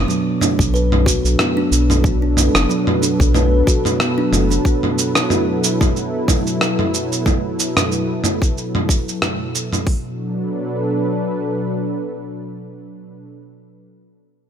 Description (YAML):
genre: organic downtempo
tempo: 92 BPM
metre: 4/4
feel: swing 55% on 16ths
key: B minor pentatonic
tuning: A4 = 437 Hz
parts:
  - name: warm analog pad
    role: sustained chords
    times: 0.0-13.2 s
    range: B2 to B4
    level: -22 LUFS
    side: equal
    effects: chorus, sidechain pumping
  - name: kalimba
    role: arpeggios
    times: 0.0-4.8 s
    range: F#3 to B4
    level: -21 LUFS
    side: equal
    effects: ping-pong delay
  - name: round analog bass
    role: bass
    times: 0.0-4.6 s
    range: F#1 to B1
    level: -17 LUFS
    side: equal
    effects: sidechain pumping
  - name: dusty soul sampler-style drum kit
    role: drums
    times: 0.1-9.8 s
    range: cabasa, rim click, toms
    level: -19 LUFS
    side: right 2 dB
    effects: none
  - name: organic electronic drum kit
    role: drums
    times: 0.6-10.0 s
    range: hi-hat, kick drum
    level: -17 LUFS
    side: equal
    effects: none
room: light reverb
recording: none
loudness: -15 LUFS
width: side -8 dB against mid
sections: 0.0-9.9 A section; 9.9-12.5 B section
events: none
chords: 0.0 Bm7